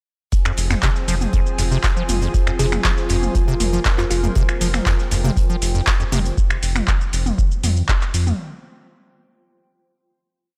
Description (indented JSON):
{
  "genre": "acid house",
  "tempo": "119 BPM",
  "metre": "4/4",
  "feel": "straight",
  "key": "F minor",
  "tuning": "A4 = 440 Hz",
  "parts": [
    { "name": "lush unison pad", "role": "sustained chords", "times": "0.3-6.3 s", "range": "F3 to Ab4", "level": "-33 LUFS", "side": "equal", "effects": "chorus, sidechain pumping" },
    { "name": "electro analog drum machine", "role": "drums", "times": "0.3-8.4 s", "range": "finger snaps, handclaps, hi-hat, shaker, toms", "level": "-26 LUFS", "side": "equal", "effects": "none" },
    { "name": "electronic kick drum", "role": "drums", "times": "0.3-8.0 s", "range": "none", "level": "-22 LUFS", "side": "equal", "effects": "none" },
    { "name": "huge arena drum kit", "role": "drums", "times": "0.3-6.4 s", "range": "hi-hat, snare drum", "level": "-41 LUFS", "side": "equal", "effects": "none" },
    { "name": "granular cloud pad", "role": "texture", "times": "1.7-6.4 s", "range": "F4 to C6", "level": "-33 LUFS", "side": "equal", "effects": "built-in reverb, sidechain pumping" },
    { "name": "acid bass, square", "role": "riff", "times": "0.5-6.2 s", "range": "F2 to F3", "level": "-27 LUFS", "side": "equal", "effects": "sidechain pumping" },
    { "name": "round analog bass", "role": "bass", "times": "0.6-8.3 s", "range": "F1 to F2", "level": "-23 LUFS", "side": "equal", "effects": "sidechain pumping" },
    { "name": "thumb-piano-like synth pluck", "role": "melody", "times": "2.6-4.2 s", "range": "F4 to Ab4", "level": "-31 LUFS", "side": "equal", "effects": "chorus, tape echo" }
  ],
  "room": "digital ambience",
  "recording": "dry, gritty hardware recording",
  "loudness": "-19 LUFS",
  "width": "mono",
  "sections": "0.3-8.4 drop",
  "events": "drop 0.3-8.4",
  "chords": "0.3 Fm",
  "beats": "| 0.33 0.83 1.33 1.84 | 2.34 2.85 3.35 3.85 | 4.36 4.86 5.37 5.87 | 6.38 6.88 7.38 7.89"
}